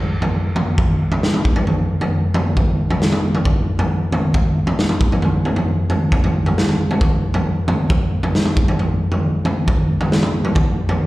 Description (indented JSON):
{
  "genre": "rock",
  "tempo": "135 BPM",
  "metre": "4/4",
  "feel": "straight",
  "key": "none",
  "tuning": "none",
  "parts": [
    { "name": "raw garage drum kit", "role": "drums", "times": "0.2-11.0 s", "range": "kick drum, snare drum, toms", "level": "-15 LUFS", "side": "equal", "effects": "none" }
  ],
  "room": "light reverb",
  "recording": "live gig heard through the venue's PA, recital hall reverb",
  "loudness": "-15 LUFS",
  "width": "side -18 dB against mid",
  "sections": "0.0-11.1 A section",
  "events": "none",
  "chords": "none"
}